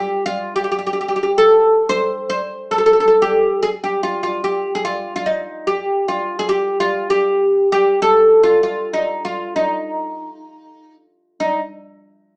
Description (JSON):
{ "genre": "calypso", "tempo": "147 BPM", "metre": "4/4", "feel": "straight", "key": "unclear", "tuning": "A4 = 441 Hz", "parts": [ { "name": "oud", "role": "solo", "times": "0.0-11.6 s", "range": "Eb4 to C5", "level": "-17 LUFS", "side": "equal", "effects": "none" } ], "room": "moderate studio reverb, RT60 0.6 s", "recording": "band playing live in one room, small speaker sound", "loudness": "-17 LUFS", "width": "mono", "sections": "0.0-11.4 A section", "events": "none", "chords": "none" }